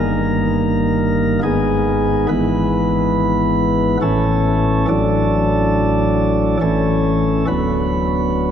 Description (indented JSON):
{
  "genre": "classical, chorale-style piece for pipe organ",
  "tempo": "70 BPM",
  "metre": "3/4",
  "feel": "straight",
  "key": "A major",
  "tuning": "A4 = 440 Hz",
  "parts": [
    { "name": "chamber organ, sparkling flutes", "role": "solo", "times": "0.0-8.5 s", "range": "D1 to B4", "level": "-14 LUFS", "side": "equal", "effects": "none" }
  ],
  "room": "wet cathedral reverb, RT60 4.4 s",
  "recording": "none",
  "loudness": "-14 LUFS",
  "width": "side -8 dB against mid",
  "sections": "0.0-8.5 A section",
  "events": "none",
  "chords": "0.0 D#/G; 1.4 G#m; 2.3 E/G#; 4.0 A; 4.9 D/A; 6.6 A; 7.5 Bm/D"
}